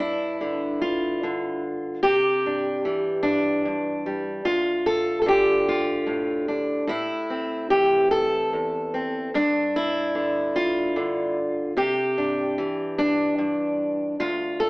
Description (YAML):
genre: folk, solo fingerstyle acoustic guitar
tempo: 49 BPM (dotted quarters)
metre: 6/8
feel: straight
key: D minor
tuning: A4 = 441 Hz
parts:
  - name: fingerpicked steel-string acoustic guitar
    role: solo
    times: 0.0-14.7 s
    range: D2 to A4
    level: -21 LUFS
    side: equal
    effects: none
room: wet large studio reverb, RT60 0.9 s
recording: band playing live in one room, AM radio sound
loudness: -21 LUFS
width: side -25 dB against mid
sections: 0.0-14.7 A section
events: none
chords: 0.0 G5; 2.0 Cadd9; 4.4 Dm; 6.9 Am; 9.3 G5; 11.8 Cadd9; 14.2 Dm